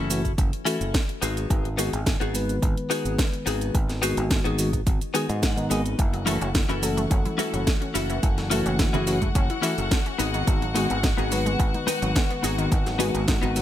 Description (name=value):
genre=nu-disco, nu disco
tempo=107 BPM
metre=4/4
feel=straight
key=unclear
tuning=A4 = 440 Hz
part: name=mellow tine electric piano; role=accompaniment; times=0.0-13.6 s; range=D#3 to B4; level=-29 LUFS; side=equal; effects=sidechain pumping, ping-pong delay
part: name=direct-recorded clean electric guitar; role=riff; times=0.0-13.6 s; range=B3 to G#5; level=-30 LUFS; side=left 4 dB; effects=wide subtle chorus, ping-pong delay
part: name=fingered electric bass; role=bass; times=0.0-13.6 s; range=F#1 to G#2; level=-28 LUFS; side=equal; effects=none
part: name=house drum kit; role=drums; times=0.1-13.6 s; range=hi-hat, shaker, snare drum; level=-29 LUFS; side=equal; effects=small room ambience
part: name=electronic kick drum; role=drums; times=0.2-13.4 s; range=none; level=-24 LUFS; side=equal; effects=small room ambience
part: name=warm chamber string section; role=sustained chords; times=6.0-13.6 s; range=F#4 to F#5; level=-32 LUFS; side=left 2 dB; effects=sidechain pumping
part: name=wide unison pluck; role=arpeggios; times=6.0-13.6 s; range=D#3 to E4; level=-33 LUFS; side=left 3 dB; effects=cassette tape, sidechain pumping, ping-pong delay
part: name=congas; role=percussion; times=6.3-13.5 s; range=none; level=-35 LUFS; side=right 4 dB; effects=none
room=little or no reverb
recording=none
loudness=-22 LUFS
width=side -12 dB against mid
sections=0.0-13.6 A section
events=clean electric guitar fill 4.9-6.0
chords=0.0 F#m7; 1.2 G#m7; 6.0 F#m7; 10.2 G#m7